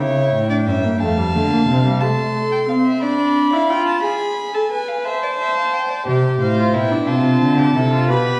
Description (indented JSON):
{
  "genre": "classical, baroque-style fugue for string quartet",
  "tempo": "59 BPM (dotted quarters)",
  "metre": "6/8",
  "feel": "straight",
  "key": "unclear",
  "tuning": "A4 = 435 Hz",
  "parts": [
    { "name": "dark violin", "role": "melody", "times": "0.0-8.4 s", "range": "F5 to C6", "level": "-27 LUFS", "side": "equal", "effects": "none" },
    { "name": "rich violin", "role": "second line", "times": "0.0-8.4 s", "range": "E4 to B5", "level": "-26 LUFS", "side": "equal", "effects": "none" },
    { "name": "rich viola", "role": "accompaniment", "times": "0.0-8.4 s", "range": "G3 to C5", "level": "-21 LUFS", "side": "equal", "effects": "none" },
    { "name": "rich cello", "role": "bass", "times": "0.0-2.0, 6.1-8.4 s", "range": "F2 to D3", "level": "-21 LUFS", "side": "equal", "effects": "none" }
  ],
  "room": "wet recital hall reverb, RT60 1.4 s",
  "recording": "heard from further back in the room",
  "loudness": "-18 LUFS",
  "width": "mono",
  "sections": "0.0-6.1 A section; 6.1-8.4 B section",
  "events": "none",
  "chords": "0.0 A7; 1.0 Dm/F; 2.0 Am; 3.0 Bdim/D; 4.0 G#m; 5.1 Am/C; 6.1 C; 7.1 Dm7/C",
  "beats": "1.00 | 2.02 3.02 | 4.04 5.05 | 6.07 7.08 | 8.10"
}